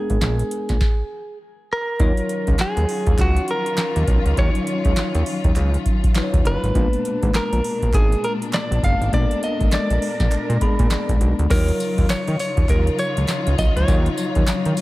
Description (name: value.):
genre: R&B, new jack swing.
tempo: 101 BPM.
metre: 4/4.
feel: swing 60% on 16ths.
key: Eb minor.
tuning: A4 = 444 Hz.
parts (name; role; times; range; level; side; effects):
direct-recorded clean electric guitar; melody; 0.0-14.8 s; Gb4 to F5; -25 LUFS; right 1 dB; spring reverb.
bell-like tine electric piano; accompaniment; 0.0-14.8 s; Gb3 to Cb6; -26 LUFS; left 3 dB; phaser.
fat analog bass; bass; 0.1-14.7 s; Gb1 to Eb3; -20 LUFS; equal; none.
booming analog drum machine; drums; 0.1-14.8 s; crash cymbal, handclaps, hi-hat, kick drum, snare drum, tambourine; -20 LUFS; equal; none.
warm studio string section; sustained chords; 2.0-14.8 s; Bb2 to Bb4; -28 LUFS; left 1 dB; none.
group handclap; percussion; 2.6-14.6 s; none; -37 LUFS; right 3 dB; none.
room: digital ambience.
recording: none.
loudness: -17 LUFS.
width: side -18 dB against mid.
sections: 0.0-2.0 A section; 2.0-11.5 B section; 11.5-14.8 C section.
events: stop 0.8-2.0; tine electric piano fill 10.3-11.5.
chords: 0.0 Bb7b9; 2.0 Ebm9; 6.8 Bb7b9; 11.5 Ebm9.